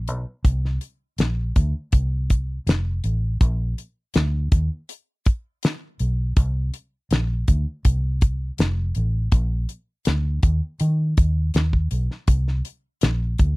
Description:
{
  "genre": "lush 1970s-style soul",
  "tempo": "81 BPM",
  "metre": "4/4",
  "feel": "straight",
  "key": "unclear",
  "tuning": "A4 = 440 Hz",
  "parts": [
    { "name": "vintage muted fingered electric bass", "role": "bass", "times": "0.0-13.6 s", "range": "F1 to D#3", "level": "-22 LUFS", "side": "equal", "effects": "none" },
    { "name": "damped 70s drum kit", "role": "drums", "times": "0.1-13.6 s", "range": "hi-hat, kick drum, snare drum", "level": "-19 LUFS", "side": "equal", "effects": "none" }
  ],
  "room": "little or no reverb",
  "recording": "dry, close 1970s-style studio recording",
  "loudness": "-20 LUFS",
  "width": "side -24 dB against mid",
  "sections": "0.4-13.6 A section",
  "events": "none",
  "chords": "none"
}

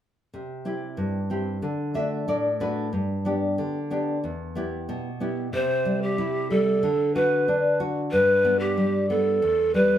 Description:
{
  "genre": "andean folk",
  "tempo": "92 BPM",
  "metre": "2/4",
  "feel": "straight",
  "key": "unclear",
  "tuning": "A4 = 440 Hz",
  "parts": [
    { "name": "nylon-string guitar", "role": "accompaniment", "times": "0.3-10.0 s", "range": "E2 to E5", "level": "-25 LUFS", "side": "equal", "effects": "none" },
    { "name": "breathy large pan pipes", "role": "melody", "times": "5.5-10.0 s", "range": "G4 to C5", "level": "-21 LUFS", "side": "equal", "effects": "none" }
  ],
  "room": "wet studio reverb, RT60 0.7 s",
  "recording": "heard from further back in the room",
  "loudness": "-22 LUFS",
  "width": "side -10 dB against mid",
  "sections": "0.3-5.5 A section; 5.5-10.0 B section",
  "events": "nylon-string guitar fill 1.6-2.9",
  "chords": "0.3 C; 1.6 D; 2.9 G; 4.2 Em; 5.5 C; 6.8 D; 8.1 G; 9.4 Em"
}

